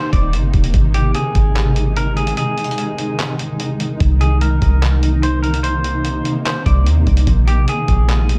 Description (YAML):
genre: hip hop, atmospheric cloud-rap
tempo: 147 BPM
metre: 4/4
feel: half-time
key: unclear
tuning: A4 = 440 Hz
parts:
  - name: clean electric guitar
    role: melody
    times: 0.0-8.4 s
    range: G4 to D5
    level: -26 LUFS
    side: equal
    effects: tape echo
  - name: granular cloud pad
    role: sustained chords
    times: 0.0-8.4 s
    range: C3 to F4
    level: -24 LUFS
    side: equal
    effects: built-in reverb, sidechain pumping
  - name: soft 808-style bass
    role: bass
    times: 0.1-8.4 s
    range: Eb1 to Eb2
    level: -17 LUFS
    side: equal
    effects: none
  - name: lo-fi sampler-style drum kit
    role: drums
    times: 0.1-8.4 s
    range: handclaps, hi-hat, kick drum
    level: -22 LUFS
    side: equal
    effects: none
room: little or no reverb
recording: none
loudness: -16 LUFS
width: mono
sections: 0.0-8.4 A section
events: break 2.4-4.0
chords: 0.0 Eb6; 0.7 Ab; 4.0 Cm7; 7.3 Bb7